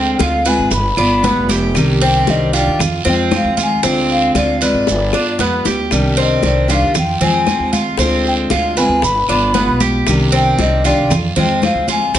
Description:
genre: latin, Cuban son and guajira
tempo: 116 BPM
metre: 4/4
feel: straight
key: C harmonic minor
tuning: A4 = 438 Hz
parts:
  - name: mellow hollow concert flute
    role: melody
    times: 0.0-12.1 s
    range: D5 to B5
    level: -18 LUFS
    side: left 1 dB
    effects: plate reverb
  - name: picked steel-string acoustic guitar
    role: accompaniment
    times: 0.0-12.2 s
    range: C3 to G4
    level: -18 LUFS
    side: left 1 dB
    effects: none
  - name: Cuban tres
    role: arpeggios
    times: 0.0-12.2 s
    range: B3 to B4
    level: -19 LUFS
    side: right 2 dB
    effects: none
  - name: upright bass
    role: bass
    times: 0.0-12.2 s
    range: F1 to G2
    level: -20 LUFS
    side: right 1 dB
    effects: none
  - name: bongos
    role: percussion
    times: 0.2-12.2 s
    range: none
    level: -25 LUFS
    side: left 7 dB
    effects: none
  - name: claves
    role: percussion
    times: 0.2-11.9 s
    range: none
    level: -30 LUFS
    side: right 3 dB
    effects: none
  - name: congas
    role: percussion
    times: 0.2-12.2 s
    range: none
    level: -22 LUFS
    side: equal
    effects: none
  - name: guiro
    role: percussion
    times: 0.2-12.2 s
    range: none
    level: -27 LUFS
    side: right 5 dB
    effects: none
  - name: maracas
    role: percussion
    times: 0.2-12.2 s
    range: none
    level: -27 LUFS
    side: right 7 dB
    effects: none
room: moderate large studio reverb, RT60 0.9 s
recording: nothing above 10.8 kHz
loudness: -12 LUFS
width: side -11 dB against mid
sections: 0.0-12.2 A section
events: drum fill 4.9-5.9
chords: 0.0 Dm7b5; 0.7 G7; 1.8 Cmadd9; 2.8 Fm; 3.8 Dm7b5; 4.9 G7; 5.9 Cmadd9; 7.0 Fm; 8.0 Dm7b5; 9.0 G7; 10.1 Cmadd9; 11.1 Fm

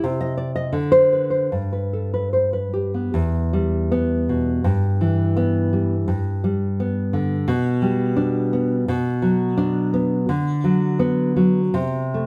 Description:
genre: romantic piece for solo classical guitar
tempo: 72-88 BPM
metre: 2/4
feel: rubato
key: G major, E minor from 3.1 s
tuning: A4 = 439 Hz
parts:
  - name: nylon-string guitar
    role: solo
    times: 0.0-12.3 s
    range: E2 to Eb5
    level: -21 LUFS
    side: equal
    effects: none
room: light reverb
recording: close, detailed microphones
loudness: -21 LUFS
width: mono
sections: 0.0-3.1 A section; 3.1-12.3 B section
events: none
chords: 0.0 Cm; 0.7 Bm/D; 1.5 G; 3.1 Em; 4.6 Em/G; 6.1 G; 7.5 G/B; 8.9 Bm; 10.3 Bm/D; 11.7 Am/C

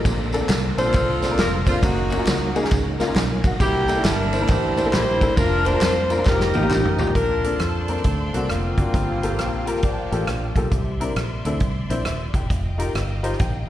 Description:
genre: uptempo gospel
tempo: 135 BPM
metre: 4/4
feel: swing 64% on 8ths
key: Bb major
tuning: A4 = 436 Hz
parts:
  - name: bright tonewheel organ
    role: sustained chords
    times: 0.0-7.1 s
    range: D3 to Eb5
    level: -30 LUFS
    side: right 6 dB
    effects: fast rotary speaker, overdrive, chorus vibrato
  - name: bright upright piano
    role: accompaniment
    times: 0.1-13.7 s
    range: G2 to Bb5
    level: -27 LUFS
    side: left 3 dB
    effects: slapback echo
  - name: fingered electric bass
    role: bass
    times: 0.1-13.6 s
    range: Eb1 to F2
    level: -25 LUFS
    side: equal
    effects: none
  - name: natural country drum kit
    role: drums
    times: 0.1-13.5 s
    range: hi-hat, kick drum, ride cymbal, rim click, snare drum, toms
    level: -23 LUFS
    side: equal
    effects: none
  - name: tambourine and handclaps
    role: percussion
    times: 0.1-7.1 s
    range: none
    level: -34 LUFS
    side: left 1 dB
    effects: none
  - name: warm saxophone section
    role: melody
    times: 0.8-10.7 s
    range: F3 to C5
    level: -23 LUFS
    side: equal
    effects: slapback echo
  - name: clear studio string section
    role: sustained chords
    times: 7.2-13.7 s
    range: D5 to C6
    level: -36 LUFS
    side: left 2 dB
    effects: none
room: small room reverb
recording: live gig heard through the venue's PA, recital hall reverb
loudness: -18 LUFS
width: side -12 dB against mid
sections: 0.0-7.2 A section; 7.2-13.7 B section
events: upright piano fill 2.9-3.6, 13.0-13.7; drum fill 6.3-7.2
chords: 0.0 Bbmaj9; 1.8 Gb6; 3.6 C13; 5.4 Bb/F; 6.3 F9sus4; 7.2 Bbmaj9; 8.0 D7alt; 8.9 Gm9; 10.7 C9; 12.5 F9sus4

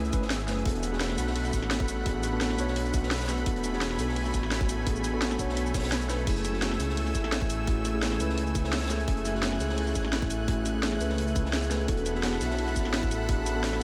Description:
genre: liquid drum and bass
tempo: 171 BPM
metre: 4/4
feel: straight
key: unclear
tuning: A4 = 439 Hz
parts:
  - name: mellow tine electric piano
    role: accompaniment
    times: 0.0-13.8 s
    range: A3 to C#5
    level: -35 LUFS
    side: equal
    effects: delay
  - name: lush unison pad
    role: sustained chords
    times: 0.0-13.8 s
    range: A3 to F#6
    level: -38 LUFS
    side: equal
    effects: chorus
  - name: swelling detuned saw bass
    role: bass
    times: 0.0-13.8 s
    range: E1 to C#2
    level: -34 LUFS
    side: equal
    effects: none
  - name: crunchy breakbeat drum kit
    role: drums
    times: 0.0-13.8 s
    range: hi-hat, snare drum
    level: -42 LUFS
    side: equal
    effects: high-pass filter on hats, high-pass filter on snare, high-pass filter on room
  - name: drum and bass drum kit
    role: drums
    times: 0.0-13.8 s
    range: crash cymbal, hi-hat, shaker, snare drum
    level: -36 LUFS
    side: equal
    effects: none
  - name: electronic kick drum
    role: drums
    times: 0.1-13.4 s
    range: none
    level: -32 LUFS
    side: equal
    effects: none
  - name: vibraphone with soft mallets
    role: arpeggios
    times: 6.3-13.8 s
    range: E4 to E5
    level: -38 LUFS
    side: equal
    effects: delay
room: moderate huge ambient reverb, RT60 7.5 s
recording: dreamy mix soaked in reverb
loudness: -28 LUFS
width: mono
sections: 0.0-13.8 A section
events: none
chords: 0.0 F#m9; 0.7 E9sus4; 6.3 F#m9; 11.9 E9sus4

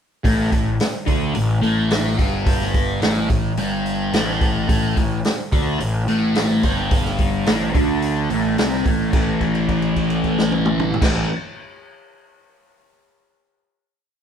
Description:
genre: psychedelic rock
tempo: 108 BPM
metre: 4/4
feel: straight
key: A minor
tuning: A4 = 440 Hz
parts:
  - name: thick fuzz guitar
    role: riff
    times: 0.2-11.3 s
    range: G2 to D4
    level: -20 LUFS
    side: equal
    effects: distortion, phaser
  - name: vintage drum kit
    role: drums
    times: 0.2-11.2 s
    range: crash cymbal, hi-hat, kick drum, snare drum, toms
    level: -21 LUFS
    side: equal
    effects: none
  - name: fuzz picked electric bass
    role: bass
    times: 0.3-11.2 s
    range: G1 to D2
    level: -25 LUFS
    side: equal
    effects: overdrive
room: light reverb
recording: band playing live in one room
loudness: -17 LUFS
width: side -8 dB against mid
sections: 0.2-9.1 riff; 9.1-11.3 final chord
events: held note 9.1-11.0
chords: 0.2 N.C.; 9.1 A5

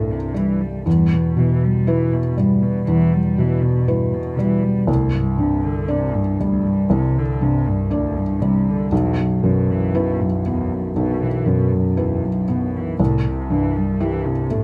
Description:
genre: neoclassical piano and strings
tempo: 59 BPM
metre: 4/4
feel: rubato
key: E minor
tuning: A4 = 440 Hz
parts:
  - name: dark cello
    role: second line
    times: 0.0-14.6 s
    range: D2 to G3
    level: -26 LUFS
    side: equal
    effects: none
  - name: felt-muted upright piano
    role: accompaniment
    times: 0.0-14.6 s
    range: B1 to D5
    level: -20 LUFS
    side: equal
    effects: none
room: little or no reverb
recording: close, detailed microphones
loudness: -19 LUFS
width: mono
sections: 0.0-14.6 A section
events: none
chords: 0.0 Am7/C; 0.9 Em; 4.9 Csus2; 8.9 Bsus4; 13.0 Am7/C

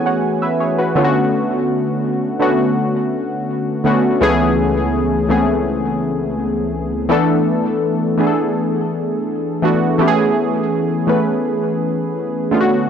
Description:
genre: R&B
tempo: 83 BPM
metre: 4/4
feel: straight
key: A major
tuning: A4 = 440 Hz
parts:
  - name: warm analog keys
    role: solo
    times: 0.0-12.9 s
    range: C#2 to G#5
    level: -15 LUFS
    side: equal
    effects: chorus, analog delay
room: light reverb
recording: dry, gritty hardware recording, transformer saturation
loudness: -15 LUFS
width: side -8 dB against mid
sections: 0.0-12.9 A section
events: none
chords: 0.0 Amaj9; 1.0 Bm9; 4.2 Amaj9/C#; 7.1 E7sus4; 10.0 Amaj9

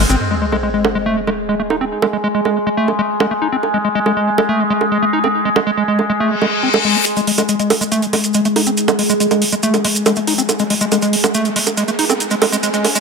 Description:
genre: psychedelic trance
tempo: 140 BPM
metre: 4/4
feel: straight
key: unclear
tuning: A4 = 442 Hz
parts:
  - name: overtone-sweeping drone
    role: sustained chords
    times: 0.0-13.0 s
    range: G#3 to G#4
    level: -19 LUFS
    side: left 1 dB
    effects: chorus, built-in reverb
  - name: overdriven acid bass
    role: riff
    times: 0.0-13.0 s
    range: G#3 to D#4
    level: -18 LUFS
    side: moving between left 6 dB and right 5 dB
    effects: auto-pan, digital delay
  - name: electronic hi-hat and bongos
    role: drums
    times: 0.1-13.0 s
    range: none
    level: -18 LUFS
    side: right 5 dB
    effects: overdrive, studio reverb
  - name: maracas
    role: percussion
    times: 0.1-0.2, 7.1-13.0 s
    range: none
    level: -23 LUFS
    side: right 2 dB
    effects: none
  - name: sub drop, reverse cymbal and riser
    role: sound effects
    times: 0.2-1.9, 6.3-13.0 s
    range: none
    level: -23 LUFS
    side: left 2 dB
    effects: none
room: moderate lush hall reverb, RT60 2.4 s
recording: high-pass filter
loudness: -13 LUFS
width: side -4 dB against mid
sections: 0.2-7.1 A section; 7.1-13.0 B section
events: impact 0.2-1.9; reverse cymbal 6.3-7.1; build-up 7.1-13.0; riser 7.1-13.0; filter sweep on acid bass 7.1-13.0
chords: 0.2 G#5

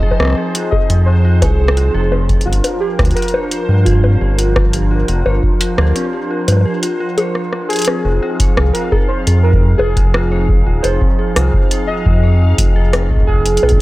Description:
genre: IDM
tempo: 86 BPM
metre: 4/4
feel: straight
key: F dorian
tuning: A4 = 445 Hz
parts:
  - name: warbly lo-fi synth keys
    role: melody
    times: 0.0-13.8 s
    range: F4 to Eb5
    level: -22 LUFS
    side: right 1 dB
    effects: chorus, analog delay
  - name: hollow soft pad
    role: sustained chords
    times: 0.0-13.8 s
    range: F3 to Bb4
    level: -21 LUFS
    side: right 1 dB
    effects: chorus
  - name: dark detuned synth bell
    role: arpeggios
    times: 0.0-13.7 s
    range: C4 to C5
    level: -25 LUFS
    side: left 2 dB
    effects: chorus, tremolo, analog delay
  - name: electronic kick drum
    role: drums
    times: 0.0-13.8 s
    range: none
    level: -16 LUFS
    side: equal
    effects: none
  - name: bubbling stepped-filter texture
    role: texture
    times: 0.0-13.8 s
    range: C5 to F5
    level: -31 LUFS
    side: right 1 dB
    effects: chorus, built-in reverb, sidechain pumping
  - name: booming analog drum machine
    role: drums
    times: 0.1-13.8 s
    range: bongos, hi-hat, rim click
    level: -19 LUFS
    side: left 1 dB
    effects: none
  - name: round analog bass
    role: bass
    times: 0.2-13.8 s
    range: Eb1 to G2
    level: -13 LUFS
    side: equal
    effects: none
room: little or no reverb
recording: dry, gritty hardware recording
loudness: -12 LUFS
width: side -18 dB against mid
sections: 0.0-8.0 A section; 8.0-13.8 B section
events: break 6.7-8.0; drum fill 7.4-8.0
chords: 0.0 Fm7; 2.5 Gm7; 8.0 Fm7

